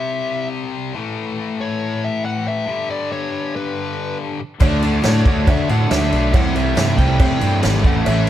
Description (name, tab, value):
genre	classic rock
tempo	139 BPM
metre	4/4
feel	straight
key	unclear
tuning	A4 = 440 Hz
part	fuzz lead guitar	melody	0.0-8.3 s	B4 to G5	-25 LUFS	left 2 dB	distortion
part	tight distorted guitar	riff	0.0-8.3 s	G2 to D4	-24 LUFS	left 4 dB	distortion
part	picked steel-string acoustic guitar	accompaniment	4.6-8.3 s	A2 to A4	-28 LUFS	left 2 dB	none
part	crunchy overdriven guitar	riff	4.6-8.3 s	A2 to F#4	-24 LUFS	right 1 dB	none
part	distorted electric guitar	riff	4.6-8.3 s	A2 to A4	-24 LUFS	right 7 dB	distortion
part	fuzz fingered electric bass	bass	4.6-8.3 s	G#1 to D3	-18 LUFS	equal	overdrive
part	vintage drum kit	drums	4.6-8.3 s	crash cymbal, kick drum, snare drum	-18 LUFS	equal	none
part	cowbell	percussion	4.6-8.2 s	none	-29 LUFS	right 7 dB	none
room	light reverb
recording	band playing live in one room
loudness	-16 LUFS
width	side -12 dB against mid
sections	0.0-8.3 A section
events	none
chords	0.0 C; 0.9 A; 2.7 G; 4.6 D; 6.3 C6